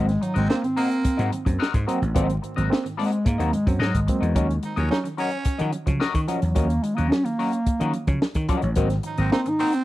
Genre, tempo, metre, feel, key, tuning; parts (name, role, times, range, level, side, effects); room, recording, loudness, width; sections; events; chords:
funk; 109 BPM; 4/4; straight; A4 = 440 Hz
dark bass clarinet; melody; 0.0-9.8 s; Gb3 to Eb4; -24 LUFS; equal
semi-hollow electric guitar; accompaniment; 0.0-9.8 s; C4 to Eb5; -30 LUFS; left 7 dB; wah
bright reed electric piano; stabs; 0.0-9.8 s; Ab2 to Db4; -29 LUFS; right 3 dB; fast tremolo, tape echo
vintage slap bass; bass; 0.0-9.3 s; Ab1 to Eb3; -24 LUFS; equal
compact cocktail drum kit; drums; 0.1-9.8 s; hi-hat, kick drum, snare drum; -25 LUFS; equal
breathy baritone saxophone; second line; 0.2-1.3, 4.6-5.7, 9.1-9.8 s; Bb3 to Eb4; -31 LUFS; right 4 dB
studio reverb; dry, close 1970s-style studio recording, vinyl crackle; -20 LUFS; side -16 dB against mid
0.0-9.8 A section
bass clarinet solo 0.0-9.8
0.0 Ab9; 4.4 Ebm7; 8.8 Ab9